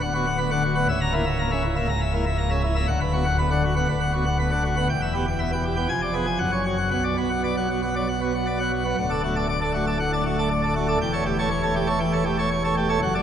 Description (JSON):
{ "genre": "classical, organ toccata", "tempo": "119 BPM", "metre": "4/4", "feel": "straight", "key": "B minor, D major from 9.0 s", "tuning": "A4 = 440 Hz", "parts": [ { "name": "pipe organ, plenum", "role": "solo", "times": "0.0-13.2 s", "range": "C#1 to A#5", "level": "-21 LUFS", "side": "equal", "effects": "none" } ], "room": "wet cathedral reverb, RT60 4.7 s", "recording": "none", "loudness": "-21 LUFS", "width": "side -9 dB against mid", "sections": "0.0-9.0 A section; 9.0-13.2 B section", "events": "none", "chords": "0.0 Bm/D; 0.9 A#dim/C#; 2.9 Bm/D; 4.9 Em; 5.9 Fdim7; 6.4 F#5; 6.9 Bm; 9.0 D; 11.0 A7/E" }